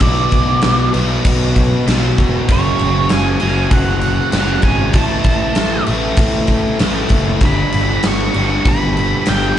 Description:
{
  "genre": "quiet-loud alternative rock",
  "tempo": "97 BPM",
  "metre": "4/4",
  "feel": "straight",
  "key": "unclear",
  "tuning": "A4 = 440 Hz",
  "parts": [
    { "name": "octave-fuzz lead guitar", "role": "melody", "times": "0.0-9.6 s", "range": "C#5 to C#6", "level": "-20 LUFS", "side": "right 2 dB", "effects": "distortion" },
    { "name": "biting overdriven guitar", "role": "riff", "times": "0.0-9.6 s", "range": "F#2 to B3", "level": "-18 LUFS", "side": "equal", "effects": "none" },
    { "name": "fuzz picked electric bass", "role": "bass", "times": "0.0-9.5 s", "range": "E1 to B1", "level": "-19 LUFS", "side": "equal", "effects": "overdrive" },
    { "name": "huge arena drum kit", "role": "drums", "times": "0.0-9.4 s", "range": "crash cymbal, kick drum, snare drum", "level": "-16 LUFS", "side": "equal", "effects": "none" }
  ],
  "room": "light reverb, small room ambience",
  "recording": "live gig heard through the venue's PA, club reverb, nothing above 10.3 kHz",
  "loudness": "-12 LUFS",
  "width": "side -11 dB against mid",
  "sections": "0.0-9.6 A section",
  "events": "none",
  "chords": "0.0 Bm; 2.5 F#5; 5.0 A5; 7.4 G",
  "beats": "| 0.02 0.63 1.25 1.87 | 2.48 3.10 3.72 4.34 | 4.95 5.57 6.19 6.81 | 7.42 8.04 8.66 9.28"
}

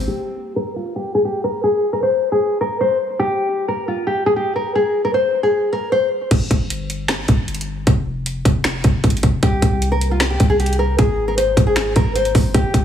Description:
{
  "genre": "hip hop, trap",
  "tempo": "154 BPM",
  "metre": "4/4",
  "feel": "half-time",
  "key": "unclear",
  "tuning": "A4 = 441 Hz",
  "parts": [
    { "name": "warm 808-style bass", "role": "bass", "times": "0.0-0.1, 6.3-12.8 s", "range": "F1 to C2", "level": "-20 LUFS", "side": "equal", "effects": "none" },
    { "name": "nylon-string guitar", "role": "melody", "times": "0.1-6.1, 9.4-12.8 s", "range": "F4 to C5", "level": "-18 LUFS", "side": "left 1 dB", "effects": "low-pass filter, tape echo" },
    { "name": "trap drum kit", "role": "drums", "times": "6.3-12.8 s", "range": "crash cymbal, finger snaps, hi-hat, kick drum, snare drum", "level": "-17 LUFS", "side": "equal", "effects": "none" }
  ],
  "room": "light reverb, digital ambience",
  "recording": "heavily compressed radio sound, multiband compression, small room reverb",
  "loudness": "-16 LUFS",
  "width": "side -9 dB against mid",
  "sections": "0.1-6.3 A section; 6.3-12.8 B section",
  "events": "filter sweep on nylon-string guitar 0.1-6.3",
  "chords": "0.1 N.C.; 7.9 Fm; 9.4 C5; 11.0 Ab",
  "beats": "| 0.08 0.47 0.86 1.25 | 1.64 2.02 2.42 2.80 | 3.19 3.58 3.97 4.36 | 4.75 5.14 5.53 5.92 | 6.31 6.70 7.09 7.48 | 7.87 8.26 8.65 9.04 | 9.43 9.82 10.21 10.60 | 10.99 11.38 11.77 12.15 | 12.54"
}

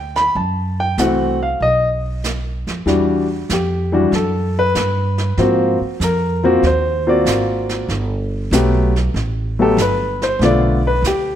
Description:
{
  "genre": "jazz piano trio",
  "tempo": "95 BPM",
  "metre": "4/4",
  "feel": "swing 69% on 8ths",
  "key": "unclear",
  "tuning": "A4 = 439 Hz",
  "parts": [
    { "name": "warm baby grand piano", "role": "melody", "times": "0.0-11.4 s", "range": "D3 to B5", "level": "-16 LUFS", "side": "left 1 dB", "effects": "none" },
    { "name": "upright bass", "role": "bass", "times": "0.0-11.4 s", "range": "G1 to G#2", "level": "-20 LUFS", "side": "right 1 dB", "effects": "none" },
    { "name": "jazz brush drum kit", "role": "drums", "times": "0.2-11.4 s", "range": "brushed snare drum, hi-hat, snare drum", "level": "-27 LUFS", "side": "right 4 dB", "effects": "none" }
  ],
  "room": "moderate recital hall reverb, RT60 1.4 s",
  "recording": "none",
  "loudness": "-15 LUFS",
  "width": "side -10 dB against mid",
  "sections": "0.0-2.9 A section; 2.9-11.4 B section",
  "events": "grand piano solo 2.9-11.4",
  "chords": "0.3 F#m7b5; 1.6 B; 2.9 Em9; 5.4 G#13; 7.9 Gmaj9; 10.4 Bm7b5",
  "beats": "| 0.35 0.98 1.61 2.23 | 2.87 3.49 4.12 4.75 | 5.38 6.01 6.64 7.27 | 7.89 8.52 9.15 9.78 | 10.41 11.04"
}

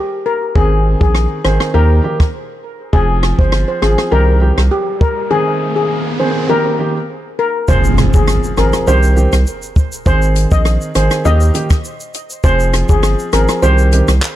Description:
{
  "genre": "dancehall",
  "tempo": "101 BPM",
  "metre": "4/4",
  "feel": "straight",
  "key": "F minor",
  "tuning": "A4 = 441 Hz",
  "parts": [
    { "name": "steel pan", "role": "melody", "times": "0.0-14.1 s", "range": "G4 to Eb5", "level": "-18 LUFS", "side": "left 3 dB", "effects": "ping-pong delay" },
    { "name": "clear grand piano", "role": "accompaniment", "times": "0.6-14.1 s", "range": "Eb3 to Ab4", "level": "-19 LUFS", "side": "right 2 dB", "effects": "none" },
    { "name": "saturated sub bass", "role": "bass", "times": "0.6-14.2 s", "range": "F1 to Eb2", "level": "-13 LUFS", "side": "equal", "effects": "none" },
    { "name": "compact cocktail drum kit", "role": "drums", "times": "0.6-14.4 s", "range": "handclaps, hi-hat, kick drum, rim click, shaker", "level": "-15 LUFS", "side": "equal", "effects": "none" },
    { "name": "riser and impact", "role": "sound effects", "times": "4.8-10.1 s", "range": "none", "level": "-21 LUFS", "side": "right 1 dB", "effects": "none" }
  ],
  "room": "studio reverb",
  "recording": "dark, warm production",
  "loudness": "-11 LUFS",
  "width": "side -13 dB against mid",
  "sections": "0.0-7.7 A section; 7.7-14.4 B section",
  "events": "riser 4.8-7.7; break 5.3-7.7; impact 7.7-10.1",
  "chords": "0.0 N.C.; 0.6 Ab; 1.7 Eb; 2.9 Fm; 4.1 Cm; 5.3 Ab; 6.5 Eb; 7.7 Fm; 8.9 Cm; 10.1 Ab; 11.2 Eb; 12.4 Fm; 13.6 Cm",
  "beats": "| 0.56 1.15 1.74 2.34 | 2.93 3.53 4.12 4.71 | 5.31 5.90 6.50 7.09 | 7.68 8.28 8.87 9.47 | 10.06 10.65 11.25 11.84 | 12.44 13.03 13.62 14.22"
}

